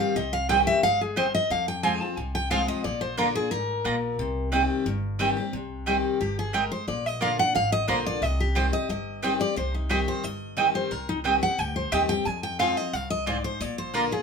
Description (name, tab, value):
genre	bluegrass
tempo	178 BPM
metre	4/4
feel	straight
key	C minor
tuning	A4 = 445 Hz
part	picked steel-string acoustic guitar	melody	0.0-14.2 s	Eb4 to A5	-27 LUFS	left 1 dB	none
part	picked steel-string acoustic guitar	accompaniment	0.0-14.2 s	F2 to G4	-30 LUFS	left 4 dB	none
part	upright bass	bass	0.2-14.1 s	G1 to F2	-33 LUFS	equal	none
part	mandolin	stabs	0.5-14.0 s	Bb3 to Bb5	-25 LUFS	right 6 dB	none
room	moderate studio ambience, RT60 0.5 s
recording	minimal, uncompressed stereo recording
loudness	-23 LUFS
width	side -5 dB against mid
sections	0.0-5.5 A section; 5.5-14.2 B section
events	steel-string acoustic guitar solo 0.0-5.5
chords	0.0 Cm; 1.5 Fm; 2.8 Bb; 4.2 Cm; 6.9 Bb; 8.2 Cm; 12.3 Fm; 13.6 Bb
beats	| 0.16 0.50 0.83 1.17 | 1.50 1.84 2.17 2.51 | 2.85 3.18 3.52 3.85 | 4.19 4.52 4.86 5.20 | 5.53 5.87 6.20 6.54 | 6.88 7.21 7.55 7.89 | 8.22 8.56 8.89 9.23 | 9.57 9.90 10.24 10.58 | 10.91 11.25 11.59 11.92 | 12.26 12.60 12.93 13.27 | 13.61 13.95